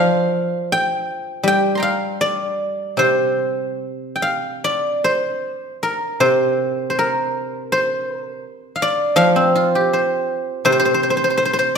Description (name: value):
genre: chinese traditional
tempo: 71-83 BPM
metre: 4/4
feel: rubato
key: C shang mode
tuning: A4 = 440 Hz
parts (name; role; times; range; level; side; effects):
- guzheng; solo; 0.0-11.8 s; C3 to C6; -17 LUFS; equal; none
room: moderate scoring stage reverb, RT60 1.6 s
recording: recorded in a church or concert hall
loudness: -17 LUFS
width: side -6 dB against mid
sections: 0.0-11.8 A section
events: none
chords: none